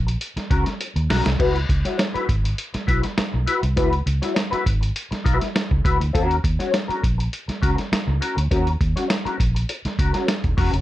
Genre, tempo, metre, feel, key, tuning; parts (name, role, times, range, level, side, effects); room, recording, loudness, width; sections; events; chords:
funk; 101 BPM; 4/4; straight; A4 = 440 Hz
vintage muted fingered electric bass; bass; 0.0-10.8 s; D#1 to D#2; -22 LUFS; equal
mellow electric guitar; accompaniment; 0.1-10.8 s; C#4 to C#5; -24 LUFS; left 3 dB; wah, ensemble chorus
lo-fi sampler-style drum kit; drums; 0.1-10.8 s; crash cymbal, hi-hat, kick drum, snare drum; -23 LUFS; equal
little or no reverb; nothing above 11.0 kHz; -19 LUFS; side -15 dB against mid
0.0-10.8 A section
drum fill 0.8-1.4
0.0 D#m7 (rootless); 1.4 C#m7; 6.1 D#m7